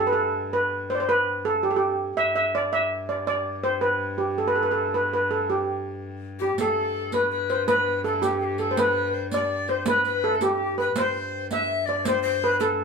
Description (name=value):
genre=medieval dance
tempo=110 BPM (dotted quarters)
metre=6/8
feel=straight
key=G major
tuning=A4 = 436 Hz
part: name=steel pan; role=melody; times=0.0-12.8 s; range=G4 to E5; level=-23 LUFS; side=right 1 dB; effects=none
part: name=rich viola da gamba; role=drone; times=0.0-12.8 s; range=G2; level=-35 LUFS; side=left 3 dB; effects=none
part: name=breathy bright bass recorder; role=second line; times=6.4-12.7 s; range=G4 to E5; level=-27 LUFS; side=left 6 dB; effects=none
part: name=riq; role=percussion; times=6.6-12.8 s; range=none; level=-32 LUFS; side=right 4 dB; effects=none
room=wet small room reverb, RT60 0.5 s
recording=band playing live in one room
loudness=-22 LUFS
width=side -5 dB against mid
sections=0.0-6.6 A section; 6.6-12.8 A section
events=none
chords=none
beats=0.54 | 1.09 1.64 | 2.19 2.74 | 3.29 3.84 | 4.39 4.94 | 5.49 6.04 | 6.58 7.13 | 7.68 8.23 | 8.78 9.32 | 9.87 10.42 | 10.96 11.51 | 12.06 12.60